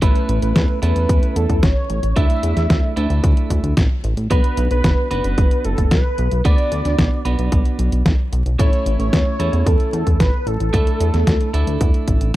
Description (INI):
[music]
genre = italo disco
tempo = 112 BPM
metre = 4/4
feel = straight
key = B minor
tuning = A4 = 440 Hz
[part]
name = wide unison lead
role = melody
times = 0.0-12.3 s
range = A4 to E5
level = -24 LUFS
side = equal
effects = tape echo
[part]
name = clean electric guitar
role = stabs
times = 0.0-12.3 s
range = A3 to B4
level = -26 LUFS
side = right 4 dB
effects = none
[part]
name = chorused synth bass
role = bass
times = 0.0-12.3 s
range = F#1 to E2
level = -19 LUFS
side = equal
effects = none
[part]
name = detuned 8-bit digital drum machine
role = drums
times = 0.0-12.3 s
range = hi-hat, snare drum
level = -21 LUFS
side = equal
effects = overdrive
[part]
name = electronic kick drum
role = drums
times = 0.0-12.2 s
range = none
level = -17 LUFS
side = equal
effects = overdrive
[sound]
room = little or no reverb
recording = dry, close 1970s-style studio recording, vinyl crackle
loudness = -15 LUFS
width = side -16 dB against mid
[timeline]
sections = 0.0-12.4 A section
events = none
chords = 0.0 A; 2.2 Dsus2; 4.3 Bm; 8.6 A; 10.7 Dsus2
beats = | 0.02 0.56 1.09 1.63 | 2.16 2.70 3.23 3.77 | 4.31 4.84 5.38 5.91 | 6.45 6.99 7.52 8.06 | 8.59 9.13 9.66 10.20 | 10.73 11.27 11.81 12.34